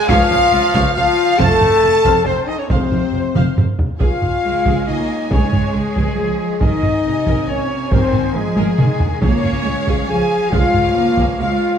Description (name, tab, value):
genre	cinematic, epic orchestral film score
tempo	138 BPM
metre	3/4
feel	straight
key	Db major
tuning	A4 = 442 Hz
part	warm symphonic violin section	melody	0.0-11.8 s	C5 to A5	-28 LUFS	left 4 dB	none
part	silver concert flute	second line	0.0-11.8 s	Ab4 to A5	-26 LUFS	left 3 dB	none
part	warm symphonic violin section	second line	0.0-11.8 s	Ab4 to A5	-27 LUFS	left 1 dB	none
part	clear trombone section	sustained chords	0.0-11.8 s	Bb2 to Bb3	-29 LUFS	right 4 dB	none
part	dark French horn section	sustained chords	0.0-11.8 s	Ab3 to A4	-19 LUFS	left 4 dB	none
part	mellow trumpet section	stabs	0.0-11.8 s	Ab4 to A5	-22 LUFS	equal	none
part	warm symphonic viola section	accompaniment	0.1-11.8 s	Ab4 to F5	-29 LUFS	right 1 dB	none
part	rich symphonic cello section	bass	0.1-11.8 s	Db2 to Bb3	-23 LUFS	right 4 dB	none
part	warm symphonic double bass section	bass	0.1-11.5 s	F1 to Db2	-23 LUFS	right 4 dB	none
part	taiko ensemble	drums	0.1-11.6 s	none	-19 LUFS	equal	none
part	timpani	percussion	9.2-9.8 s	Db3	-26 LUFS	equal	none
room	moderate recital hall reverb, RT60 1.5 s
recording	none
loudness	-13 LUFS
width	side -8 dB against mid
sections	0.0-4.0 A section; 4.0-11.8 A section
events	drum fill 3.4-4.0, 8.6-9.2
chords	0.0 Db; 1.4 F; 4.0 Db; 6.6 Abadd9; 9.2 Db